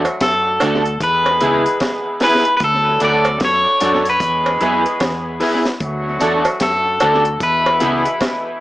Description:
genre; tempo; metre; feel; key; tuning
roots reggae; 75 BPM; 4/4; swing 62% on 16ths; unclear; A4 = 440 Hz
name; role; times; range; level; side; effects
dark horn section; second line; 0.0-8.6 s; B2 to A4; -25 LUFS; equal; tape echo
clear grand piano; stabs; 0.0-8.0 s; B3 to B4; -21 LUFS; left 1 dB; none
vintage muted fingered electric bass; bass; 0.0-8.1 s; C#2 to F#2; -26 LUFS; equal; none
cowbell; percussion; 0.0-8.4 s; none; -22 LUFS; right 2 dB; none
deep reggae drum kit; drums; 0.1-8.4 s; hi-hat, kick drum, snare drum; -23 LUFS; equal; tape echo
electric guitar at the edge of break-up; melody; 0.2-8.6 s; A4 to D5; -17 LUFS; left 1 dB; tape echo, plate reverb
electric guitar at the edge of break-up; accompaniment; 0.6-8.0 s; B3 to A4; -22 LUFS; right 2 dB; ensemble chorus, tape echo
room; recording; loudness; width
wet small room ambience, RT60 0.5 s; small speaker sound; -14 LUFS; side -16 dB against mid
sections
0.0-8.6 A section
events
none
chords
0.0 D; 1.0 E; 2.6 D; 4.2 E; 5.8 D; 7.4 E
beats
0.21 1.01 1.81 | 2.61 3.41 4.21 5.01 | 5.81 6.61 7.41 8.21

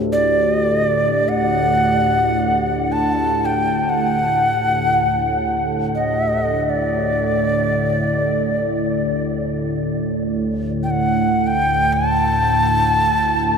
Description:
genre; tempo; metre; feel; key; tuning
world meditative, free-time meditation music; free time; none; none; D major; A4 = 440 Hz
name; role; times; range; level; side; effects
deep dark ambient pad; drone; 0.0-13.6 s; D2 to A2; -20 LUFS; right 1 dB; chorus, built-in reverb
bronze singing bowl; texture; 0.0-5.2 s; G4; -32 LUFS; left 1 dB; none
mellow Native American-style cedar flute; melody; 0.1-13.6 s; D5 to A5; -18 LUFS; equal; none
room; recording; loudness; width
wet huge ambient reverb, RT60 8.9 s; in a vast, echoing space; -16 LUFS; side -6 dB against mid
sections
0.0-13.6 A section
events
none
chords
none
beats
free time

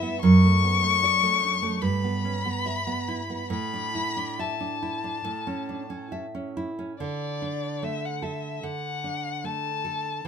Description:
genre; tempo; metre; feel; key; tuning
romantic duo for violin and classical guitar; 67-76 BPM; 4/4; rubato; D major; A4 = 439 Hz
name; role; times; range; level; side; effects
rich violin; melody; 0.0-10.3 s; D5 to C#6; -27 LUFS; left 7 dB; none
nylon-string guitar; accompaniment; 0.0-10.3 s; F#2 to E5; -26 LUFS; right 2 dB; none
room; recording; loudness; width
light reverb; minimal, uncompressed stereo recording; -24 LUFS; side -8 dB against mid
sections
0.0-7.0 A section; 7.0-10.3 B section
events
none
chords
0.2 D/F#; 1.8 Em/G; 3.5 Asus4; 5.3 A; 7.0 D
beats
| 0.23 1.02 1.82 2.65 | 3.50 4.39 5.26 6.12 | 7.00 7.83 8.64 9.45 | 10.26

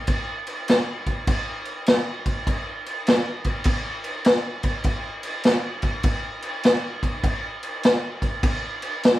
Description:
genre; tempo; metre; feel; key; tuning
rock; 101 BPM; 4/4; swing 65% on 8ths; none; none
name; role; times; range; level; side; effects
vintage drum kit; drums; 0.1-9.2 s; crash cymbal, kick drum, snare drum; -21 LUFS; equal; none
room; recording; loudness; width
light reverb; band playing live in one room; -21 LUFS; side -15 dB against mid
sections
0.0-9.2 A section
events
none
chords
none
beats
| 0.08 0.68 1.27 1.87 | 2.46 3.06 3.66 4.25 | 4.85 5.45 6.04 6.64 | 7.24 7.83 8.43 9.03

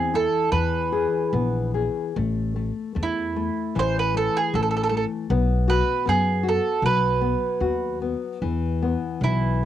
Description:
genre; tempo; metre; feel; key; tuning
fado-style ballad; 72-79 BPM; 2/4; rubato; unclear; A4 = 440 Hz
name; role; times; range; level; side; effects
mandolin; melody; 0.0-9.7 s; E4 to C5; -23 LUFS; right 5 dB; cassette tape
nylon-string guitar; accompaniment; 0.0-9.7 s; E3 to G#4; -26 LUFS; left 7 dB; none
upright bass; bass; 0.0-9.7 s; A1 to F#2; -25 LUFS; equal; none
room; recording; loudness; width
moderate booth ambience, RT60 0.3 s; home recording on cassette; -21 LUFS; side -11 dB against mid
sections
0.0-9.7 A section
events
none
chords
0.0 Eadd11; 0.5 E; 2.2 A5; 5.3 B; 8.4 E5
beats
| 0.52 1.33 | 2.15 2.97 | 3.77 4.54 | 5.31 6.06 | 6.82 7.60 | 8.41 9.21

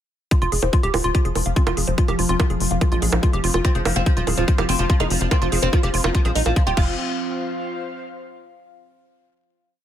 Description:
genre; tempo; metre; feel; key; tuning
psychedelic trance; 144 BPM; 4/4; straight; F minor; A4 = 440 Hz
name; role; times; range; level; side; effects
evolving wavetable pad; sustained chords; 1.0-6.8 s; F3; -30 LUFS; equal; chorus, built-in reverb, sidechain pumping
woody wave-folded pluck; riff; 0.3-7.0 s; F4 to F5; -26 LUFS; equal; chorus, auto-pan, sidechain pumping, ping-pong delay
drum and bass drum kit; drums; 0.3-6.9 s; bongos, crash cymbal, hi-hat; -26 LUFS; right 2 dB; studio reverb
electronic kick drum; drums; 0.3-6.9 s; none; -18 LUFS; equal; studio reverb
airy breathy pad; texture; 0.3-8.6 s; C4 to F5; -32 LUFS; right 1 dB; chorus, sidechain pumping
tight sequencer bass; bass; 0.4-7.0 s; Eb1 to Bb1; -23 LUFS; equal; none
vowel-sweep wobble bass; second line; 1.6-6.4 s; Ab3 to C4; -38 LUFS; right 3 dB; none
oud; melody; 3.6-6.9 s; F3 to G4; -26 LUFS; right 1 dB; phaser, sidechain pumping, ping-pong delay
room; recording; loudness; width
little or no reverb; none; -18 LUFS; side -10 dB against mid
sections
0.3-7.0 groove; 7.0-8.6 final chord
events
fade-in on analog synth pad 0.3-7.0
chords
0.3 F5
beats
| 0.31 0.73 1.15 1.56 | 1.98 2.40 2.81 3.23 | 3.65 4.06 4.48 4.90 | 5.31 5.73 6.15 6.56 | 6.98 7.40 7.81 8.23

